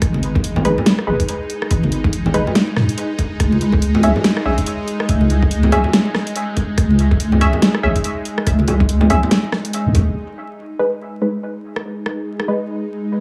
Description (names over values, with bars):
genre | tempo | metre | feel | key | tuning
deep dubstep | 142 BPM | 4/4 | swing 59% on 16ths, half-time | G# minor | A4 = 441 Hz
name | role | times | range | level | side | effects
bowed-like drone | sustained chords | 0.0-13.2 s | G#3 to D#4 | -26 LUFS | equal | built-in reverb, phaser
deep soft wobble bass | bass | 0.0-10.2 s | F#1 to G#2 | -18 LUFS | equal | chorus
dubstep drum kit | drums | 0.0-12.5 s | hi-hat, rim click, snare drum | -21 LUFS | equal | none
electronic kick drum | drums | 0.0-10.0 s | none | -22 LUFS | equal | none
congas and bongos | percussion | 0.1-10.0 s | none | -26 LUFS | equal | dub echo
filtered dub chord stab | stabs | 0.7-12.6 s | G#3 to E5 | -24 LUFS | equal | chorus, cassette tape, dub echo
room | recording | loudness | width
light reverb | vinyl crackle, small room ambience | -17 LUFS | mono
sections
0.0-10.2 A section; 10.2-13.2 B section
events
filter sweep on synth drone 10.2-13.2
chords
0.0 G#m; 3.4 C#m; 10.2 G#m